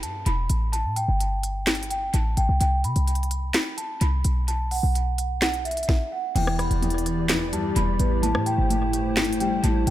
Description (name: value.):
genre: hip hop, trap.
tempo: 128 BPM.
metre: 4/4.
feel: half-time.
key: E minor.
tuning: A4 = 440 Hz.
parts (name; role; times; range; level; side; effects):
large celesta; melody; 0.0-9.9 s; E5 to B5; -29 LUFS; right 1 dB; low-pass filter, analog delay.
short 808-style bass; bass; 0.0-9.9 s; E1 to C3; -24 LUFS; equal; none.
trap drum kit; drums; 0.0-9.9 s; crash cymbal, handclaps, hi-hat, kick drum, rim click, snare drum; -27 LUFS; equal; analog delay.
dark grand piano; accompaniment; 6.4-9.9 s; E2 to B3; -26 LUFS; left 1 dB; low-pass filter, analog delay.
hollow soft pad; sustained chords; 6.4-9.9 s; E3 to D5; -30 LUFS; equal; ensemble chorus.
room: little or no reverb.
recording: echo-heavy mix.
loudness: -21 LUFS.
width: side -13 dB against mid.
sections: 0.0-6.4 A section; 6.4-9.9 B section.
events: break 0.0-6.4.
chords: 0.0 Em; 0.7 A7(no3); 2.6 Amadd9 (rootless); 4.5 B5; 6.4 Em7; 8.2 Am7.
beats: 0.26 | 0.73 1.20 1.67 2.14 | 2.61 3.08 3.54 4.01 | 4.48 4.95 5.42 5.89 | 6.36 6.83 7.29 7.76 | 8.23 8.70 9.17 9.64.